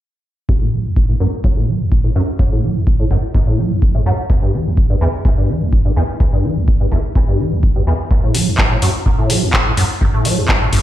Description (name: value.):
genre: acid house.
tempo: 126 BPM.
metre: 4/4.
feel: straight.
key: F# phrygian.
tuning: A4 = 441 Hz.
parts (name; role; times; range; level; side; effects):
liquid acid bass; riff; 0.5-10.8 s; D2 to F#3; -17 LUFS; equal; ensemble chorus, vintage 12-bit sampler grit, sidechain pumping, digital delay.
electronic kick drum; drums; 0.5-10.8 s; none; -15 LUFS; equal; none.
booming analog drum machine; drums; 8.3-10.8 s; handclaps, hi-hat; -18 LUFS; left 1 dB; none.
room: moderate digital room reverb, RT60 1.0 s.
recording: played on a big sound system in a bare room, large studio reverb.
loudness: -13 LUFS.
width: side -13 dB against mid.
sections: 0.5-10.8 A section.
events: filter sweep on acid bass 0.5-10.8.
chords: none.